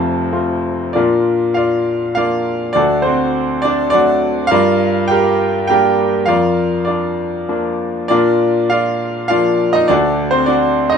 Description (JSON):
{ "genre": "classical, lyrical solo piano", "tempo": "102 BPM", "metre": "3/4", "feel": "rubato", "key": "Bb major", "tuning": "A4 = 440 Hz", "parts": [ { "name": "bright grand piano", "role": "solo", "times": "0.0-11.0 s", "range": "F1 to A5", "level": "-13 LUFS", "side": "equal", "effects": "none" } ], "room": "moderate studio reverb, RT60 0.6 s", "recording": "minimal, uncompressed stereo recording", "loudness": "-13 LUFS", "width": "side -7 dB against mid", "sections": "1.0-11.0 A section", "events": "none", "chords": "0.0 F; 1.0 Bb; 2.8 D; 4.5 Gm; 6.3 Bb/F; 8.1 Bb; 9.9 D" }